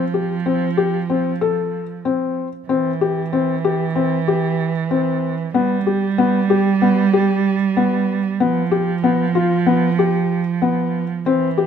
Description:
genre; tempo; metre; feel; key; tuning
contemporary instrumental, chamber music in an uneven meter; 189 BPM (eighths); 9/8; straight; G mixolydian; A4 = 440 Hz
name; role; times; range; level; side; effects
dark cello; second line; 0.0-11.7 s; E3 to G3; -19 LUFS; right 7 dB; none
felt-muted upright piano; arpeggios; 0.0-11.7 s; B3 to A4; -19 LUFS; left 6 dB; none
room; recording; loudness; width
moderate recital hall reverb, RT60 1.5 s; close, detailed microphones; -16 LUFS; side -8 dB against mid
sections
0.0-11.7 A section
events
none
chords
0.0 F; 2.7 C; 5.5 G; 8.4 G7

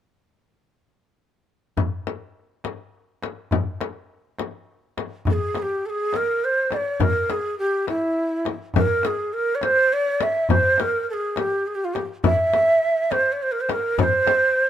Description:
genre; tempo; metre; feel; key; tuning
Persian modal ensemble; 69 BPM (dotted quarters); 6/8; straight; C dastgah homayun; A4 = 440 Hz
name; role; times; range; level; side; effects
frame drum; percussion; 1.8-14.4 s; none; -25 LUFS; left 6 dB; none
tombak; percussion; 1.8-14.4 s; none; -27 LUFS; right 1 dB; none
breathy ney; melody; 5.3-14.7 s; E4 to E5; -20 LUFS; right 2 dB; none
room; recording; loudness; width
moderate spring reverb, RT60 1.3 s; minimal, uncompressed stereo recording; -19 LUFS; side -10 dB against mid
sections
1.8-5.3 A section; 5.3-14.7 B section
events
none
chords
none

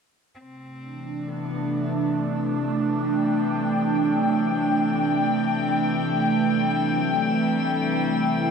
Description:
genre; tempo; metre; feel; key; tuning
ambient; 69 BPM; 4/4; straight; unclear; A4 = 440 Hz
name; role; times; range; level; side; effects
warm cello; melody; 0.4-8.5 s; E3 to C4; -37 LUFS; left 1 dB; ping-pong delay
analog drone; drone; 0.6-8.5 s; C3 to A3; -29 LUFS; left 1 dB; chorus
drifting glass-harmonics texture; texture; 1.2-8.5 s; E6; -43 LUFS; left 1 dB; chorus, built-in reverb
airy breathy pad; sustained chords; 1.1-8.5 s; E3 to G5; -22 LUFS; equal; chorus
barky tine electric piano; arpeggios; 1.3-8.5 s; A4 to E5; -47 LUFS; left 1 dB; none
room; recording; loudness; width
wet huge ambient reverb, RT60 7.2 s; cassette tape; -21 LUFS; side -6 dB against mid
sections
0.4-8.5 A section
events
fade-in on synth texture 0.4-8.5; fade-in on cello 0.4-8.5; filter sweep on analog synth pad 0.4-8.5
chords
0.4 Am7

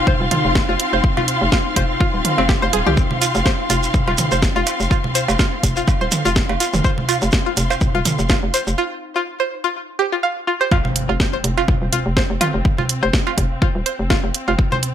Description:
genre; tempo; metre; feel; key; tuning
minimal techno; 124 BPM; 4/4; swing 56% on 16ths; unclear; A4 = 441 Hz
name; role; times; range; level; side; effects
swarming drone; texture; 0.0-8.8 s; Eb4; -32 LUFS; left 5 dB; built-in reverb, sidechain pumping
warm studio string section; texture; 0.0-14.9 s; C4 to C6; -24 LUFS; left 1 dB; sidechain pumping
string-like resonator pluck; riff; 0.1-14.8 s; C4 to F5; -22 LUFS; equal; chorus, sidechain pumping, digital delay
electronic kick drum; drums; 0.1-14.7 s; none; -18 LUFS; equal; none
electronic congas, toms and cowbell; percussion; 0.1-14.8 s; none; -24 LUFS; right 3 dB; none
hollow knocking FM bass; bass; 0.2-14.6 s; Eb1 to C2; -22 LUFS; equal; sidechain pumping
house drum kit; drums; 0.3-14.9 s; hi-hat, snare drum; -21 LUFS; right 1 dB; none
shekere; percussion; 3.0-8.8 s; none; -25 LUFS; right 3 dB; none
impact; sound effects; 10.7-12.7 s; none; -30 LUFS; equal; none
room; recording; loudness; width
light reverb; none; -16 LUFS; side -10 dB against mid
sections
0.0-10.7 A section; 10.7-14.9 B section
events
break 8.8-10.7; drop 10.7-14.9; impact 10.7-12.7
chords
0.0 F5

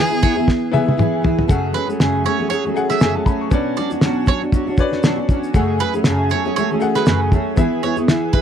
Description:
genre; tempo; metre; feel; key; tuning
acoustic pop; 118 BPM; 4/4; swing 55% on 16ths; F# minor; A4 = 441 Hz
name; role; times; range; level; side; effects
warm violin; melody; 0.0-0.9 s; G#4; -23 LUFS; left 1 dB; none
clear upright piano; accompaniment; 0.0-8.4 s; A3 to C#6; -26 LUFS; left 8 dB; none
fingerpicked steel-string acoustic guitar; accompaniment; 0.0-8.4 s; F#2 to G#4; -18 LUFS; right 1 dB; double-tracked left and right
bowl-back mandolin; arpeggios; 0.2-8.4 s; B4 to E5; -22 LUFS; right 10 dB; none
cloth-damped thuddy drum kit; drums; 0.2-8.4 s; kick drum, shaker, snare drum, toms; -16 LUFS; equal; none
room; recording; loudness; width
little or no reverb; dry, close 1970s-style studio recording; -15 LUFS; side -8 dB against mid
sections
0.0-1.5 A section; 1.5-8.4 B section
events
drum fill 0.5-1.5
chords
0.0 E; 1.5 F#madd9; 3.5 Bmadd9; 5.5 F#madd9; 7.6 E

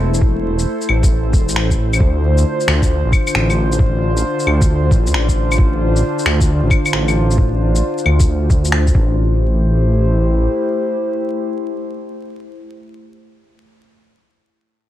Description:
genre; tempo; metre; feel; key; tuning
future garage; 134 BPM; 4/4; swing 66% on 16ths; A minor; A4 = 440 Hz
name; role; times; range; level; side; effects
warbly tape-like pad; sustained chords; 0.0-13.4 s; D3 to C5; -20 LUFS; equal; chorus, built-in reverb, vintage 12-bit sampler grit, sidechain pumping
dark detuned saw bass; bass; 0.0-10.5 s; E1 to D2; -16 LUFS; equal; sidechain pumping
electronic shaker, claves and finger snaps; drums; 0.1-8.9 s; none; -20 LUFS; left 2 dB; studio reverb
electronic kick drum; drums; 0.2-9.1 s; none; -14 LUFS; equal; studio reverb
room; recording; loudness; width
light reverb; vinyl crackle; -13 LUFS; side -13 dB against mid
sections
0.0-9.2 A section; 9.2-12.8 B section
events
none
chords
0.0 Am; 2.0 Dm7; 8.9 Am7

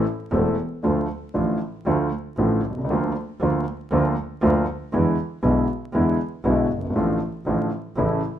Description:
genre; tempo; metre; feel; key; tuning
tango; 117 BPM; 4/4; rubato; unclear; A4 = 440 Hz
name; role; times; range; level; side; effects
dark concert grand piano; accompaniment; 0.0-8.2 s; E1 to A4; -22 LUFS; equal; none
clear double bass; bass; 0.3-8.2 s; E1 to E2; -26 LUFS; right 2 dB; none
room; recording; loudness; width
moderate studio reverb, RT60 0.7 s; minimal, uncompressed stereo recording, vinyl crackle; -20 LUFS; side -10 dB against mid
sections
0.8-8.4 A section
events
none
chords
0.0 Am; 0.8 Dm; 2.9 Bb/D; 4.9 E7; 7.0 Dm/A

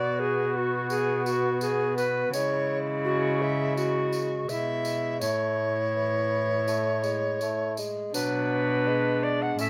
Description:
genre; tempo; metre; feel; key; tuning
classical, renaissance-style consort dance; 83 BPM; 4/4; straight; B dorian; A4 = 440 Hz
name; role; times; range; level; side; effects
mellow tenor recorder; melody; 0.0-9.7 s; E4 to F#5; -34 LUFS; equal; none
bright bass recorder; second line; 0.0-9.7 s; C#4 to E5; -30 LUFS; equal; none
mellow bassoon; accompaniment; 0.0-9.7 s; E3 to B3; -35 LUFS; equal; none
rich cello; bass; 0.0-9.7 s; A2 to C#3; -34 LUFS; equal; none
tambourine; percussion; 0.9-9.7 s; none; -41 LUFS; equal; none
room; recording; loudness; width
light reverb; none; -27 LUFS; mono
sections
0.0-8.1 A section; 8.1-9.7 B section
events
none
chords
0.0 B5; 2.3 C#m; 5.2 A; 8.1 Bm

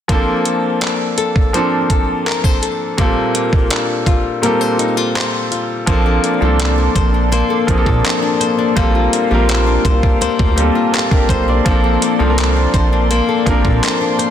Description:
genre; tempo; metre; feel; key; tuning
contemporary R&B; 83 BPM; 4/4; straight; Bb major; A4 = 439 Hz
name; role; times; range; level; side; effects
clear grand piano; accompaniment; 0.1-14.3 s; Bb2 to D5; -18 LUFS; right 2 dB; none
flamenco guitar; arpeggios; 0.1-14.3 s; Bb3 to C5; -19 LUFS; left 7 dB; digital delay
detuned 8-bit digital drum machine; drums; 0.1-14.3 s; handclaps, hi-hat, kick drum; -17 LUFS; right 1 dB; vintage 12-bit sampler grit
chorused pulse-width pad; sustained chords; 6.3-14.3 s; Bb3 to C6; -21 LUFS; left 3 dB; none
rubbery square bass; bass; 5.9-13.8 s; Bb1 to Bb2; -16 LUFS; right 1 dB; none
room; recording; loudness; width
light reverb; dense, heavily limited modern master; -12 LUFS; side -10 dB against mid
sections
0.1-5.9 A section; 5.9-14.3 B section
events
kick muted 4.4-5.9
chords
0.1 Bbmaj9; 3.0 Gm11/Bb; 5.9 Bbmaj9; 8.8 Gm11/Bb; 11.7 Bbmaj9

